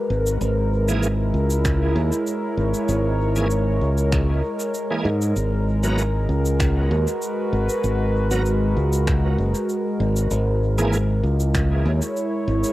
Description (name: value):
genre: ambient dub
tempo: 97 BPM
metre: 4/4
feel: straight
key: unclear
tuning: A4 = 440 Hz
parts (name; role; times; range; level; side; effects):
- warbly tape-like pad; sustained chords; 0.0-12.7 s; G#3 to C#5; -24 LUFS; equal; chorus, built-in reverb
- modern bright fingered electric bass; bass; 0.1-12.6 s; F#1 to G#2; -20 LUFS; equal; none
- electronic cabasa and finger snaps; drums; 0.3-12.7 s; none; -31 LUFS; equal; dub echo
- bright tonewheel organ; stabs; 0.9-11.0 s; E3 to A#4; -28 LUFS; right 2 dB; chorus vibrato, slow rotary speaker, dub echo
- electronic kick drum; drums; 1.6-11.7 s; none; -24 LUFS; equal; overdrive
room: little or no reverb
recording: home recording on cassette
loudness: -19 LUFS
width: side -16 dB against mid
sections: 0.0-12.7 A section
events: none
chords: 0.4 F#9/G#; 5.4 G#m9; 10.3 F#9/G#